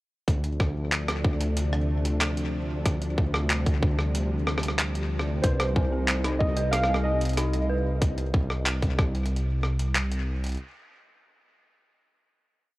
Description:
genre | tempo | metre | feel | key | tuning
IDM | 93 BPM | 4/4 | straight | unclear | A4 = 440 Hz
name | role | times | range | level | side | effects
soft string machine | sustained chords | 0.5-8.0 s | C3 to Eb4 | -34 LUFS | equal | ensemble chorus
dark detuned saw bass | bass | 0.3-10.6 s | C2 to D2 | -27 LUFS | equal | none
electronic kick drum | drums | 0.3-9.1 s | none | -25 LUFS | equal | none
jungle sampler-style drum kit | drums | 0.3-10.6 s | handclaps, hi-hat, rim click | -30 LUFS | equal | overdrive, ping-pong delay
warbly lo-fi synth keys | melody | 5.4-7.6 s | C5 to F5 | -30 LUFS | right 1 dB | chorus, tape echo
dark detuned synth bell | arpeggios | 5.4-7.8 s | C4 to B4 | -34 LUFS | right 1 dB | chorus, vintage 12-bit sampler grit, tape echo
room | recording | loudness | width
little or no reverb | worn, warbling old tape, cassette tape, warbly pitch drift | -23 LUFS | side -19 dB against mid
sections
0.3-10.6 groove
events
none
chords
0.3 Dm7; 5.4 Cm6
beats
| 0.28 0.92 1.57 2.21 | 2.86 3.50 4.15 4.79 | 5.44 6.08 6.73 7.37 | 8.02 8.66 9.31 9.95

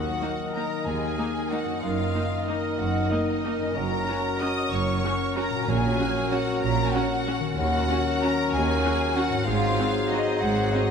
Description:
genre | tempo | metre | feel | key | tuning
classical | 188 BPM | 3/4 | uneven beats, rubato | unclear | A4 = 440 Hz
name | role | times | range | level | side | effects
rich studio violin section | melody | 0.0-10.9 s | Eb5 to Eb6 | -32 LUFS | left 4 dB | none
clear clarinet | second line | 0.0-10.9 s | Ab4 to Bb4 | -34 LUFS | right 1 dB | none
mellow cor anglais | second line | 0.0-10.9 s | C5 to Eb5 | -36 LUFS | right 1 dB | none
mellow hollow silver concert flute | second line | 0.0-10.9 s | Eb5 to Eb6 | -35 LUFS | left 2 dB | none
rich studio violin section | second line | 0.0-10.9 s | Eb4 to Eb5 | -35 LUFS | left 2 dB | none
mellow bassoon | accompaniment | 0.0-10.9 s | Eb3 to Gb3 | -33 LUFS | right 3 dB | none
dark French horn section | sustained chords | 0.0-10.9 s | Bb3 to Gb4 | -31 LUFS | left 5 dB | none
concert harp | arpeggios | 0.0-10.9 s | Gb2 to Bb4 | -35 LUFS | left 7 dB | none
rich studio cello section | bass | 0.0-10.7 s | Eb2 to Bb2 | -32 LUFS | right 3 dB | none
rich studio double bass section | bass | 0.0-10.7 s | Gb1 to Eb2 | -31 LUFS | right 4 dB | none
clear chamber viola section | accompaniment | 0.2-10.8 s | Bb3 to Gb4 | -34 LUFS | right 2 dB | none
timpani | percussion | 5.7-6.1 s | Bb2 | -33 LUFS | right 1 dB | none
room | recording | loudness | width
wet concert hall reverb, RT60 2.0 s | none | -23 LUFS | side -6 dB against mid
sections
0.0-10.9 A section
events
none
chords
0.0 Ebm; 1.8 Ebm/Gb; 3.8 Gb; 5.7 Gb/Bb; 7.6 Ebm7; 9.5 Ab7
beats
0.21 0.55 | 0.86 1.18 1.51 | 1.83 2.15 2.48 | 2.79 3.11 3.44 | 3.77 4.08 4.41 | 4.72 5.04 5.37 | 5.68 5.99 6.32 | 6.62 6.94 7.27 | 7.58 7.89 8.22 | 8.53 8.84 9.16 | 9.47 9.78 10.11 | 10.42 10.73

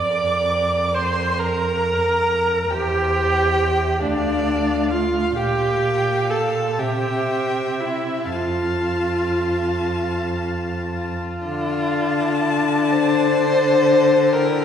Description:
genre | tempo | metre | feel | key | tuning
classical, slow romantic movement for string quartet | 37-46 BPM (dotted quarters) | 6/8 | rubato | F major, D minor from 11.4 s | A4 = 440 Hz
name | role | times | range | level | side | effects
rich violin | melody | 0.0-14.6 s | Bb4 to A5 | -29 LUFS | left 4 dB | none
warm violin | second line | 0.0-14.6 s | F4 to D6 | -24 LUFS | left 2 dB | none
rich viola | accompaniment | 0.0-14.6 s | D4 to D5 | -21 LUFS | equal | none
clear cello | bass | 0.0-14.6 s | D2 to D3 | -24 LUFS | right 1 dB | none
room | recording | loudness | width
wet scoring stage reverb, RT60 2.0 s | heard from further back in the room | -18 LUFS | side -8 dB against mid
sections
0.0-11.4 A section; 11.4-14.6 B section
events
none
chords
0.1 Bbadd9/F; 2.7 C/E; 4.0 Dm; 5.4 Gm7/Bb; 6.8 C; 8.3 F; 11.4 Dm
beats
| 0.08 1.39 | 2.71 4.02 | 5.37 6.79 | 8.32 9.90 | 11.44 12.94 | 14.34

